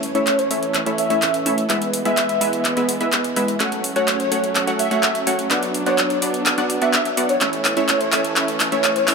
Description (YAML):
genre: EDM, festival progressive house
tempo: 126 BPM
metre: 4/4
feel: straight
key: A major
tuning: A4 = 440 Hz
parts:
  - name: dark chamber string section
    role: sustained chords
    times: 0.0-9.1 s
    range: E3 to D4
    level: -27 LUFS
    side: right 2 dB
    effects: none
  - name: supersaw stab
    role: riff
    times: 0.0-9.1 s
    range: G#3 to F#5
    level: -22 LUFS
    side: equal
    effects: cassette tape, low-pass filter, digital delay
  - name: wide detuned saw bass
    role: bass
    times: 0.0-9.1 s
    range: E1 to A2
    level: -38 LUFS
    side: equal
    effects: none
  - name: big-room dance drum kit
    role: drums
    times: 0.0-9.1 s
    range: handclaps, hi-hat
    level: -21 LUFS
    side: equal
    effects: none
  - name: airy dreamy lead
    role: melody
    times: 0.1-9.1 s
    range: C#5 to E5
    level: -22 LUFS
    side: equal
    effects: chorus, digital delay
  - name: riser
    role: sound effects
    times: 9.0-9.1 s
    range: none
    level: barely audible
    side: none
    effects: none
room: moderate lush hall reverb, RT60 2.0 s, digital ambience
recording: high-pass filter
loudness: -17 LUFS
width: side -4 dB against mid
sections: 0.0-9.1 A section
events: build-up 0.0-9.1; drum fill 0.0-9.1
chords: 0.0 A; 1.7 E; 3.6 F#m; 5.5 Bm; 7.4 A